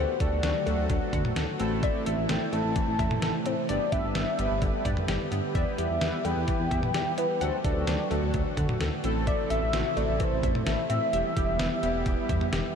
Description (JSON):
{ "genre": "synth-pop", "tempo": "129 BPM", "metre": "4/4", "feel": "straight", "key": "unclear", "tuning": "A4 = 442 Hz", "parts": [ { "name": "warm velvety synth lead", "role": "melody", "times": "0.0-12.7 s", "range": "B4 to A5", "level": "-30 LUFS", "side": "left 1 dB", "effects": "chorus, analog delay" }, { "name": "analog synth brass", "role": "accompaniment", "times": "0.0-12.5 s", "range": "G3 to B4", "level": "-34 LUFS", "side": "right 1 dB", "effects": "chorus" }, { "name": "chorused pulse-width pad", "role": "sustained chords", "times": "0.0-12.8 s", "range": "C3 to G4", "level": "-34 LUFS", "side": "equal", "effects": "none" }, { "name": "analog pluck", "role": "arpeggios", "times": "0.0-12.7 s", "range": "D3 to F#5", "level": "-37 LUFS", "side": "left 4 dB", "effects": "chorus, analog delay" }, { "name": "smooth synth bass", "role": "bass", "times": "0.0-12.6 s", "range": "E1 to E3", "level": "-31 LUFS", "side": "equal", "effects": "none" }, { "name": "detuned 8-bit digital drum machine", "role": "drums", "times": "0.2-12.6 s", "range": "cowbell, hi-hat, kick drum, snare drum, toms", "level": "-31 LUFS", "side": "equal", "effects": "none" } ], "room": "wet huge ambient reverb, RT60 7.9 s", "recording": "dreamy mix soaked in reverb", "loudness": "-25 LUFS", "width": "side -7 dB against mid", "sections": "0.0-12.8 A section", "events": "none", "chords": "0.0 D; 1.6 Am; 3.7 G; 5.6 Em; 7.4 D; 9.0 Am; 11.1 Em" }